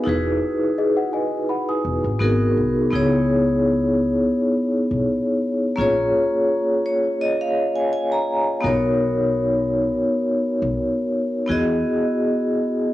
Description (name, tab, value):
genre	hip hop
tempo	84 BPM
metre	4/4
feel	swing 56% on 16ths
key	unclear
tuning	A4 = 442 Hz
part	celesta	second line	0.0-2.2 s	G#4 to D#6	-27 LUFS	left 3 dB	cassette tape, analog delay
part	vibraphone with medium hard mallets	accompaniment	0.0-12.9 s	A#3 to A#5	-19 LUFS	equal	cassette tape
part	upright bass	bass	0.1-11.8 s	E1 to E2	-25 LUFS	left 1 dB	tube saturation
room	moderate booth ambience, RT60 0.2 s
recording	home recording on cassette, small room reverb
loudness	-18 LUFS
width	side -15 dB against mid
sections	0.0-2.9 A section; 2.9-12.9 A section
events	vibraphone fill 6.5-8.6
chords	0.1 Emaj9; 2.2 G#m9; 2.9 C#m9; 5.8 A#m7; 8.6 Bmaj7; 11.5 Emaj9